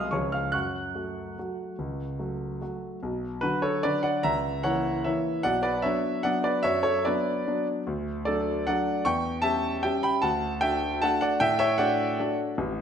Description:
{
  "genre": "classical, piano waltz",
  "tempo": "140-159 BPM",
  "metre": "3/4",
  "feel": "rubato",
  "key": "F# minor",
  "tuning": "A4 = 440 Hz",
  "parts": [
    { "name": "warm grand piano", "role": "solo", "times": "0.0-12.8 s", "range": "A1 to F#6", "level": "-25 LUFS", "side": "equal", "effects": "none" }
  ],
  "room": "wet recital hall reverb, RT60 1.3 s",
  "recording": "none",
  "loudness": "-25 LUFS",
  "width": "side -8 dB against mid",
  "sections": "0.0-3.0 A section; 3.0-12.8 B section",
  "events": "none",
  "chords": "0.1 C#; 0.5 F#m; 3.0 Bm; 4.2 A#dim/C#; 5.4 Bm; 7.9 D; 9.1 C#dim/E; 10.2 D",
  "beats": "0.13 | 0.53 0.94 1.36 | 1.78 2.18 2.61 | 3.03 3.43 3.84 | 4.25 4.64 5.05 | 5.45 5.84 6.25 | 6.64 7.04 7.46 | 7.86 8.26 8.67 | 9.06 9.44 9.84 | 10.23 10.62 11.02 | 11.41 11.79 12.19 | 12.58"
}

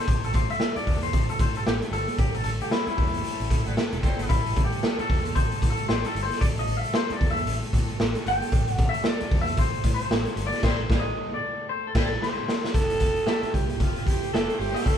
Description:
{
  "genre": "funk",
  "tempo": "114 BPM",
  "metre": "4/4",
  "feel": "swing 60% on 16ths",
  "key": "A minor",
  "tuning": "A4 = 442 Hz",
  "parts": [
    { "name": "clean electric guitar", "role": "accompaniment", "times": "0.0-14.9 s", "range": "E4 to G5", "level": "-29 LUFS", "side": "left 3 dB", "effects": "none" },
    { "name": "warm chamber string section", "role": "sustained chords", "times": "0.0-15.0 s", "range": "F3 to A4", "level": "-36 LUFS", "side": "left 1 dB", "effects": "none" },
    { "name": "vintage muted fingered electric bass", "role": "bass", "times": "0.1-15.0 s", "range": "E1 to A2", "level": "-30 LUFS", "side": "equal", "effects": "none" },
    { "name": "raw garage drum kit", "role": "drums", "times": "0.1-15.0 s", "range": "crash cymbal, hi-hat, kick drum, snare drum", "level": "-24 LUFS", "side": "equal", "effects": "none" },
    { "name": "clear horn section", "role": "second line", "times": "3.7-4.4, 10.6-15.0 s", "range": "G3 to C5", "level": "-35 LUFS", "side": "left 2 dB", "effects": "none" },
    { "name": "breathy alto saxophone", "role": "melody", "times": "12.7-15.0 s", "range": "F4 to A4", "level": "-28 LUFS", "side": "right 2 dB", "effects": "none" }
  ],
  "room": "light reverb",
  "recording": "band playing live in one room",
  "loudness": "-22 LUFS",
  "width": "side -9 dB against mid",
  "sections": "0.0-12.7 A section; 12.7-15.0 B section",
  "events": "clean electric guitar solo 0.0-12.7; band accent 2.2-4.3, 10.6-12.7; drum fill 12.2-12.7",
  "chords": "0.0 Am7; 12.7 Fmaj9",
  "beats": "| 0.08 0.60 1.13 1.66 | 2.19 2.72 3.25 3.77 | 4.30 4.83 5.36 5.89 | 6.41 6.94 7.47 8.00 | 8.52 9.05 9.58 10.11 | 10.63 11.16 11.69 12.21 | 12.74 13.27 13.80 14.33 | 14.86"
}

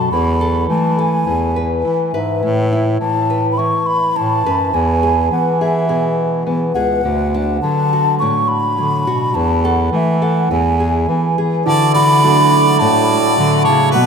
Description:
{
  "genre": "acoustic folk duo or small band",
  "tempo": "104 BPM",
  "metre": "4/4",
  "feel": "straight",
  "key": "unclear",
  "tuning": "A4 = 441 Hz",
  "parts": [
    { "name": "baroque flute", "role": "melody", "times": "0.0-14.1 s", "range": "E5 to C#6", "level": "-17 LUFS", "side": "equal", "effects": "none" },
    { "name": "nylon-string guitar", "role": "accompaniment", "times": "0.0-14.1 s", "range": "F#2 to B4", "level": "-20 LUFS", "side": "left 2 dB", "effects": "none" },
    { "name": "clear bass clarinet", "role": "bass", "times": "0.0-14.1 s", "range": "C#2 to E3", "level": "-18 LUFS", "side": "right 1 dB", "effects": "none" },
    { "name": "pedal harmonium", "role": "sustained chords", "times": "11.6-14.1 s", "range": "B3 to D5", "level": "-23 LUFS", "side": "equal", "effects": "none" },
    { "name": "bright harmonica", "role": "second line", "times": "11.7-14.1 s", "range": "B4 to D5", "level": "-18 LUFS", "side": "right 5 dB", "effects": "none" },
    { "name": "clear upright piano", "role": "arpeggios", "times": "11.7-14.1 s", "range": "E3 to F#4", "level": "-18 LUFS", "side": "right 6 dB", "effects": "none" }
  ],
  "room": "wet cathedral reverb, RT60 4.8 s",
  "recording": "in a vast, echoing space",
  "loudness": "-13 LUFS",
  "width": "side -6 dB against mid",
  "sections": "0.0-11.7 A section; 11.7-14.1 B section",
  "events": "none",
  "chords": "0.1 Esus4; 1.3 E; 2.4 Asus2; 4.7 E; 7.0 D; 9.3 Esus4; 10.5 E; 11.7 Dadd9",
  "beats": "| 0.12 0.69 1.27 1.84 | 2.42 3.00 3.57 4.15 | 4.73 5.30 5.88 6.46 | 7.04 7.62 8.19 8.77 | 9.35 9.93 10.50 11.08 | 11.66 12.23 12.81 13.38 | 13.96"
}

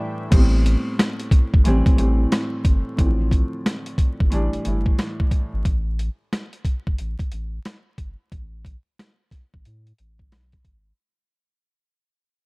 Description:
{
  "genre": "hip hop, boom-bap hip-hop",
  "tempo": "90 BPM",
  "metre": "4/4",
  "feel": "swing 62% on 16ths",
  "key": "A minor",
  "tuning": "A4 = 440 Hz",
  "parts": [
    { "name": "dark grand piano", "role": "accompaniment", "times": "0.0-5.7 s", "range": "A2 to E4", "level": "-25 LUFS", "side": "equal", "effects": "high-pass filter, low-pass filter" },
    { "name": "soft dub sub bass", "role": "bass", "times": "0.3-10.9 s", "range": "G1 to A2", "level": "-22 LUFS", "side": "equal", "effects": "none" },
    { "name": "boom bap sampler-style drum kit", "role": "drums", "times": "0.3-10.8 s", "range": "crash cymbal, hi-hat, kick drum, rim click, snare drum", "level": "-19 LUFS", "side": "equal", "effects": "none" }
  ],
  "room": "small room ambience",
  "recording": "dark, warm production, vinyl crackle",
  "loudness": "-18 LUFS",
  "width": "side -31 dB against mid",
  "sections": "0.3-11.0 A section",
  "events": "break 0.0-0.3, 5.7-11.0; fade-out 0.3-11.0",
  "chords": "0.3 Am9; 1.7 Am7; 3.0 Dm7/A; 4.3 Em7; 5.7 N.C.; 9.7 G#m",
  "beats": "| 0.32 0.98 1.65 2.32 | 2.98 3.65 4.32 4.99 | 5.65 6.32 6.99 7.65 | 8.32 8.98 9.65 10.32"
}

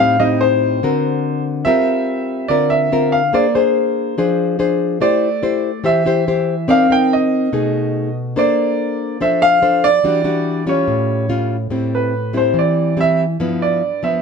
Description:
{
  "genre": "bossa nova",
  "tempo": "143 BPM",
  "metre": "4/4",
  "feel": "straight",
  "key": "unclear",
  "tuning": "A4 = 440 Hz",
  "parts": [
    { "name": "clear grand piano", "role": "melody", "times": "0.0-14.2 s", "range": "B4 to G5", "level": "-17 LUFS", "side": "right 2 dB", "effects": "none" },
    { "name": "nylon-string guitar", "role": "accompaniment", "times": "0.0-14.2 s", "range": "G2 to D5", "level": "-17 LUFS", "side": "left 2 dB", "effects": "none" }
  ],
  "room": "moderate studio reverb, RT60 0.8 s",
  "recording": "band playing live in one room",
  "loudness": "-14 LUFS",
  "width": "side -5 dB against mid",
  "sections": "0.0-11.7 A section; 11.7-14.2 B section",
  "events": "grand piano solo 11.7-14.2",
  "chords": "0.0 Am7b5; 0.8 Daug7; 1.7 Gm7; 3.3 Bb9; 5.0 Am7; 6.7 Cm9; 7.5 B6; 8.4 Bbmaj9; 10.0 Em9; 10.9 Aaug7; 11.7 Am7; 13.4 G6",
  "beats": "0.41 0.83 1.24 | 1.66 2.08 2.50 2.92 | 3.34 3.76 4.17 4.59 | 5.01 5.43 5.85 6.27 | 6.69 7.11 7.52 7.94 | 8.36 8.78 9.20 9.62 | 10.04 10.45 10.87 11.29 | 11.71 12.13 12.55 12.97 | 13.39 13.81"
}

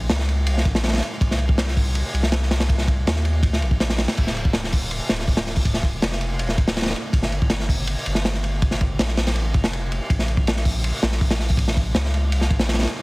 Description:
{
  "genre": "drum and bass, jungle",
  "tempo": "162 BPM",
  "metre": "4/4",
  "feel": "straight",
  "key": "D phrygian",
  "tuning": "A4 = 439 Hz",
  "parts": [
    { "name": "saturated sub bass", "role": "bass", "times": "0.0-12.9 s", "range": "D1 to Eb2", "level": "-23 LUFS", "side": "equal", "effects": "none" },
    { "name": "crunchy breakbeat drum kit", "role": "drums", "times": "0.1-13.0 s", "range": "crash cymbal, hi-hat, kick drum, ride cymbal, snare drum", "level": "-20 LUFS", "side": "equal", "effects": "none" }
  ],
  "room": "little or no reverb",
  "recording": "heavily compressed radio sound, multiband compression",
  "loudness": "-19 LUFS",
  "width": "side -25 dB against mid",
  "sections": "0.0-4.2 A section; 4.2-13.0 A section",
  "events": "drop 0.0-4.2, 4.2-13.0",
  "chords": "none",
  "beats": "0.10 0.47 0.84 | 1.21 1.58 1.95 2.32 | 2.69 3.06 3.43 3.80 | 4.17 4.54 4.91 5.28 | 5.65 6.03 6.39 6.77 | 7.14 7.51 7.88 8.25 | 8.62 8.99 9.36 9.73 | 10.10 10.47 10.84 11.21 | 11.58 11.95 12.32 12.69"
}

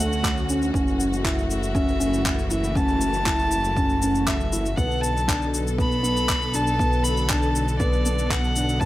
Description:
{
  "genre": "piano and strings electronica",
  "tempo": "119 BPM",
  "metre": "4/4",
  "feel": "straight",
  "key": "B minor",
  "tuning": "A4 = 440 Hz",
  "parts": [
    { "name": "dark violin", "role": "melody", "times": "0.0-8.9 s", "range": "D5 to B5", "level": "-27 LUFS", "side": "equal", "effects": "none" },
    { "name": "warm studio string section", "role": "sustained chords", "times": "0.0-8.9 s", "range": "D3 to B4", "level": "-30 LUFS", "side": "left 1 dB", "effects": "none" },
    { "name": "felt-muted upright piano", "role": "riff", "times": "0.0-8.9 s", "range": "A3 to E4", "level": "-26 LUFS", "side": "equal", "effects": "tape echo" },
    { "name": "dark detuned saw bass", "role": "bass", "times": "0.0-8.9 s", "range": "F#1 to D2", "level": "-27 LUFS", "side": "equal", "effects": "sidechain pumping" },
    { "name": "electronic shaker and handclaps", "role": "drums", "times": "0.0-8.9 s", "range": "none", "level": "-29 LUFS", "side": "equal", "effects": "none" },
    { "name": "electronic kick drum", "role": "drums", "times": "0.2-8.9 s", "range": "none", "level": "-27 LUFS", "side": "equal", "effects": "none" }
  ],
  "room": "light reverb, small room ambience",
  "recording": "none",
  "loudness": "-20 LUFS",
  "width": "side -15 dB against mid",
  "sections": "0.0-8.9 A section",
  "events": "none",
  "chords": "0.0 Dmaj7; 0.7 F#m7; 4.8 Bm7",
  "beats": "0.24 | 0.74 1.25 1.75 2.25 | 2.76 3.26 3.77 4.27 | 4.78 5.28 5.78 6.29 | 6.79 7.30 7.80 8.30 | 8.81"
}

